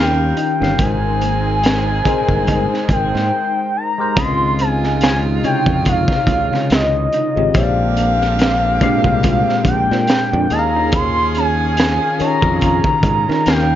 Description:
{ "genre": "R&B, neo-soul", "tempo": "71 BPM", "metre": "4/4", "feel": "swing 57% on 16ths", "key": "unclear", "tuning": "A4 = 440 Hz", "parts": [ { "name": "gliding portamento lead", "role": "melody", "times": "0.0-13.8 s", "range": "Eb5 to C6", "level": "-18 LUFS", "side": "equal", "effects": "chorus" }, { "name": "bright tine electric piano", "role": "accompaniment", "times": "0.0-13.8 s", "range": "Bb2 to F5", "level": "-21 LUFS", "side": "left 6 dB", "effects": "phaser" }, { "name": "warm analog pad", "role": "sustained chords", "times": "0.0-13.8 s", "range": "Eb3 to C5", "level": "-26 LUFS", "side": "equal", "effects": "lush chorus" }, { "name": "warm saxophone section", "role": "stabs", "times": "0.0-13.8 s", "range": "C3 to Bb4", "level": "-27 LUFS", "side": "right 4 dB", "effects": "none" }, { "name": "modern bright fingered electric bass", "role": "bass", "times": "0.0-13.8 s", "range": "G1 to Eb3", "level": "-20 LUFS", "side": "right 1 dB", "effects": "none" }, { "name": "electric guitar through a small old amp", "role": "second line", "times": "0.4-13.5 s", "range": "Bb3 to F4", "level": "-26 LUFS", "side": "right 5 dB", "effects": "none" }, { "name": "crunchy breakbeat drum kit", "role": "drums", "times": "0.4-13.7 s", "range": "hi-hat, kick drum, snare drum", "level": "-19 LUFS", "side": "right 1 dB", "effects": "none" } ], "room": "little or no reverb", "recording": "nothing above 7.5 kHz", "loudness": "-13 LUFS", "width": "side -11 dB against mid", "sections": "0.0-4.2 A section; 4.2-13.8 A section", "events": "break 3.3-4.2", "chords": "0.0 Eb9; 0.8 Abmaj9; 4.2 Dbmaj9; 7.5 Bb13; 10.5 Eb9sus4", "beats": "| 0.79 1.63 2.48 3.32 | 4.17 5.01 5.86 6.70 | 7.55 8.39 9.24 10.08 | 10.93 11.77 12.62 13.46" }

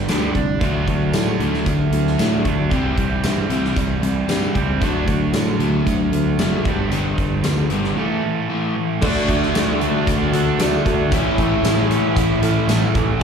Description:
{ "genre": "classic rock", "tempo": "114 BPM", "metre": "4/4", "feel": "straight", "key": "D major", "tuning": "A4 = 441 Hz", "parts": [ { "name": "crunchy overdriven guitar", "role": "riff", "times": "0.0-13.2 s", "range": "G2 to F#4", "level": "-23 LUFS", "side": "left 9 dB", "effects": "spring reverb, slapback echo" }, { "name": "distorted electric guitar", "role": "riff", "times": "0.0-13.2 s", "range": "G2 to A4", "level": "-23 LUFS", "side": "right 9 dB", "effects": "distortion, slapback echo" }, { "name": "fingered electric bass", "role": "bass", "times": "0.0-13.2 s", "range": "F#1 to A2", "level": "-23 LUFS", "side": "right 1 dB", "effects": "none" }, { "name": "big rock drum kit", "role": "drums", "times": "0.1-13.1 s", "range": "crash cymbal, hi-hat, kick drum, snare drum, tambourine", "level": "-23 LUFS", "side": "equal", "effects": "none" }, { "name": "picked old ladder-braced acoustic guitar", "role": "accompaniment", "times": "9.0-13.2 s", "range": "A2 to A4", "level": "-26 LUFS", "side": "left 2 dB", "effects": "slapback echo" }, { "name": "tonewheel organ", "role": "sustained chords", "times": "9.0-13.2 s", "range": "A3 to D5", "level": "-32 LUFS", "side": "equal", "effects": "none" }, { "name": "distorted electric guitar", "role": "riff", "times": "9.0-13.2 s", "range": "A2 to F#4", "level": "-23 LUFS", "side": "equal", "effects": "overdrive, slapback echo" } ], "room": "light reverb, small room reverb", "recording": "live gig heard through the venue's PA, club reverb", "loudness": "-16 LUFS", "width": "side -6 dB against mid", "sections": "0.0-9.0 A section; 9.0-13.2 B section", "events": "none", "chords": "0.0 G; 0.6 D; 2.7 C; 4.8 D; 6.7 G; 8.0 A; 9.0 D; 11.1 A", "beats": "0.09 | 0.62 1.14 1.67 2.19 | 2.72 3.24 3.77 4.29 | 4.82 5.34 5.87 6.39 | 6.92 7.44 7.97 8.49 | 9.02 9.54 10.07 10.59 | 11.12 11.64 12.17 12.69 | 13.21" }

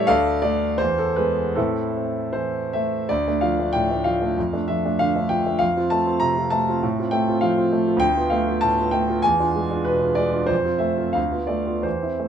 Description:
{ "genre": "classical, romantic character piece for solo piano", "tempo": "75-102 BPM", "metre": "2/4", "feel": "rubato", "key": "A minor, D minor from 3.1 s", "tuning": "A4 = 440 Hz", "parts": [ { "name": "clear concert grand piano", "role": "solo", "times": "0.0-12.3 s", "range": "D2 to Bb5", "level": "-19 LUFS", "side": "equal", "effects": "none" } ], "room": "light reverb", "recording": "minimal, uncompressed stereo recording", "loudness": "-19 LUFS", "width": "side -8 dB against mid", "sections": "0.0-3.1 A section; 3.1-12.3 B section", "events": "none", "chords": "0.1 Dm; 0.8 E; 1.6 Am; 3.1 Dm; 4.4 Dm/F; 5.6 F; 6.8 F/A; 8.0 B7(b5, no3); 9.2 E7b9; 10.5 F; 11.2 Bm7b5/D", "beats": "| 0.09 0.80 | 1.57 2.35 | 3.10 3.75 | 4.38 5.00 | 5.61 6.22 | 6.83 7.43 | 8.03 8.63 | 9.24 9.87 | 10.51 11.17 | 11.85" }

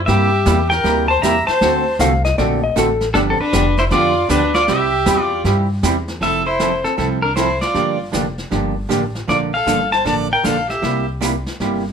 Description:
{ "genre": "country, western swing", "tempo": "156 BPM", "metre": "4/4", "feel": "swing 64% on 8ths", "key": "F major", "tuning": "A4 = 442 Hz", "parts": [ { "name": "upright bass", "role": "bass", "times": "0.0-11.9 s", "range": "F1 to G2", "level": "-22 LUFS", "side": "equal", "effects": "none" }, { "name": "pedal steel guitar", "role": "melody", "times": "0.1-11.1 s", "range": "D4 to Bb5", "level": "-17 LUFS", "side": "left 2 dB", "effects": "none" }, { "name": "rich fiddle", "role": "second line", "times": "0.1-11.1 s", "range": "C4 to E5", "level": "-24 LUFS", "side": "right 2 dB", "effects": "none" }, { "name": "archtop guitar, miked and amplified", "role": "accompaniment", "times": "0.1-11.8 s", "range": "C3 to A4", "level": "-20 LUFS", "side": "right 3 dB", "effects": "none" }, { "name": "vintage brush drum kit", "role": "drums", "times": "0.1-11.9 s", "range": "brushed snare drum, hi-hat, snare drum", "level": "-26 LUFS", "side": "equal", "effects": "none" }, { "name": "clean lap steel guitar", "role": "second line", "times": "2.0-3.1 s", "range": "A4 to F5", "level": "-19 LUFS", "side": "left 5 dB", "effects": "none" } ], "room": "moderate studio reverb, RT60 0.7 s", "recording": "none", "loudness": "-15 LUFS", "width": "side -7 dB against mid", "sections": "0.0-6.2 A section; 6.2-11.9 B section", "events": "none", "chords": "0.0 C7; 1.6 D7; 3.1 G7; 4.7 C; 6.2 Fmaj7; 7.7 Gm7; 9.3 Bbmaj7; 10.8 C7", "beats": "| 0.08 0.46 0.84 1.23 | 1.61 1.99 2.38 2.76 | 3.14 3.52 3.91 4.29 | 4.67 5.06 5.44 5.83 | 6.21 6.59 6.98 7.36 | 7.75 8.13 8.52 8.90 | 9.29 9.67 10.06 10.45 | 10.83 11.21 11.60" }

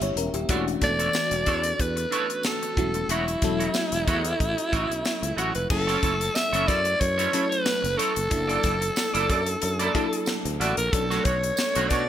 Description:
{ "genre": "polished 1980s jazz-funk pop", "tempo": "92 BPM", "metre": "4/4", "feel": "swing 54% on 16ths", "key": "unclear", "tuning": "A4 = 440 Hz", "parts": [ { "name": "bell-like FM electric piano", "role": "accompaniment", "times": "0.0-12.1 s", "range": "E3 to E5", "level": "-31 LUFS", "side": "left 2 dB", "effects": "phaser, wide subtle chorus" }, { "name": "clean electric guitar", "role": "riff", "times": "0.0-12.0 s", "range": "A3 to D5", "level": "-30 LUFS", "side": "right 4 dB", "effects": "analog chorus" }, { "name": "sustaining fretless electric bass", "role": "bass", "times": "0.0-12.1 s", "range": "D#1 to B2", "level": "-30 LUFS", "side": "equal", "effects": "none" }, { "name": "tight funk drum kit", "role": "drums", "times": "0.0-12.1 s", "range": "crash cymbal, hi-hat, kick drum, snare drum", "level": "-28 LUFS", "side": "left 1 dB", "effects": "gated reverb" }, { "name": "raspy alto saxophone", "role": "melody", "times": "0.8-12.1 s", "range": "E4 to E5", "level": "-26 LUFS", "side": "equal", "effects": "none" }, { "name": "tambourine", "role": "percussion", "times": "1.1-11.7 s", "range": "none", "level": "-36 LUFS", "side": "right 9 dB", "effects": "none" } ], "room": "light reverb, small room ambience", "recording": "bright 1980s-style digital production", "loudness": "-22 LUFS", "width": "side -10 dB against mid", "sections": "0.0-5.7 A section; 5.7-12.1 B section", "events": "none", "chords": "0.5 Bm11/E; 2.8 F#m7/E; 5.7 F#m7; 8.3 F#7alt; 10.9 Bm9", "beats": "| 0.49 1.15 1.80 2.45 | 3.10 3.75 4.40 5.05 | 5.71 6.36 7.01 7.66 | 8.32 8.97 9.62 10.28 | 10.93 11.58" }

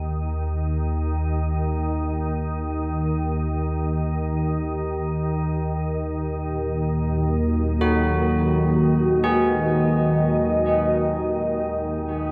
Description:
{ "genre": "dark ambient drone", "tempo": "free time", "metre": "none", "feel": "none", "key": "Eb minor", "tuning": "A4 = 440 Hz", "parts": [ { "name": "organ-like drone", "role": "drone", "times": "0.0-12.3 s", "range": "Eb2 to Eb3", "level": "-25 LUFS", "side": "equal", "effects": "ensemble chorus, built-in reverb" }, { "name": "dark analog pad", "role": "sustained chords", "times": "6.1-12.3 s", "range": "Bb3 to Eb5", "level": "-25 LUFS", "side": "equal", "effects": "chorus" }, { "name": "carillon bells", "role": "arpeggios", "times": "7.8-12.3 s", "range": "Gb4 to Ab4", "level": "-29 LUFS", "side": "equal", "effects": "diffuse ambient delay" } ], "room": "wet cathedral reverb, RT60 5.6 s", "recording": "in a vast, echoing space", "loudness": "-23 LUFS", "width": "mono", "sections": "0.0-12.3 A section", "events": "none", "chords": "0.0 Ebm", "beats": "free time" }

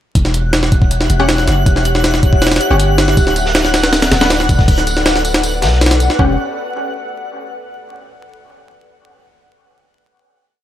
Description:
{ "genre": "drum and bass, jungle", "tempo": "159 BPM", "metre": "4/4", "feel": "straight", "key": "E dorian", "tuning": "A4 = 440 Hz", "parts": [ { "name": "long sustained 808-style bass", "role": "bass", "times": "0.2-6.4 s", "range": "D1 to B1", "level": "-16 LUFS", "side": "equal", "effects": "none" }, { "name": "jungle sampler-style drum kit", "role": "drums", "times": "0.2-6.3 s", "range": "hi-hat, kick drum, snare drum", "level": "-13 LUFS", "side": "equal", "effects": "none" }, { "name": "twinkling granular texture", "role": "texture", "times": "0.4-6.2 s", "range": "F#6", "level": "-23 LUFS", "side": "right 1 dB", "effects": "built-in reverb" }, { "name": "orchestra-hit-like synth stab", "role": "stabs", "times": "1.2-6.3 s", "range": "C#4 to F#5", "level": "-21 LUFS", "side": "left 2 dB", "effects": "built-in reverb, dub echo" }, { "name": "crunchy breakbeat drum kit", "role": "drums", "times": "3.2-6.1 s", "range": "hi-hat, snare drum, tambourine", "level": "-23 LUFS", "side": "right 2 dB", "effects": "high-pass filter on hats, high-pass filter on snare, high-pass filter on perc, high-pass filter on room" } ], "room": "light reverb, small room ambience", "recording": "vinyl crackle", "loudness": "-11 LUFS", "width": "side -12 dB against mid", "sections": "0.2-6.2 drop; 6.2-7.7 final chord", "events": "drop 0.2-6.2", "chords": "0.2 Em69; 3.2 D6; 6.2 Em69", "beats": "| 0.15 0.53 0.91 1.29 | 1.66 2.04 2.42 2.79 | 3.17 3.55 3.93 4.30 | 4.68 5.06 5.44 5.81 | 6.19" }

